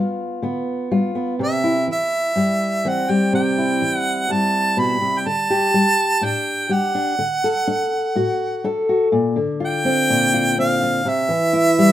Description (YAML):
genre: acoustic folk-pop ballad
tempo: 62 BPM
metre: 4/4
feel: straight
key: unclear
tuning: A4 = 443 Hz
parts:
  - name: fingerpicked steel-string acoustic guitar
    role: accompaniment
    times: 0.0-11.9 s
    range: G2 to A4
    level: -19 LUFS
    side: left 1 dB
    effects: none
  - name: clear harmonica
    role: melody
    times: 1.4-11.9 s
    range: E5 to B5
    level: -19 LUFS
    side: right 2 dB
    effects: none
room: light reverb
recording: minimal, uncompressed stereo recording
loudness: -17 LUFS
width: side -12 dB against mid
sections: 0.0-9.1 A section; 9.1-11.9 B section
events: none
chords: 0.0 G7/D; 1.4 C; 5.3 Dsus4; 7.2 D; 9.1 Bbadd9; 11.1 C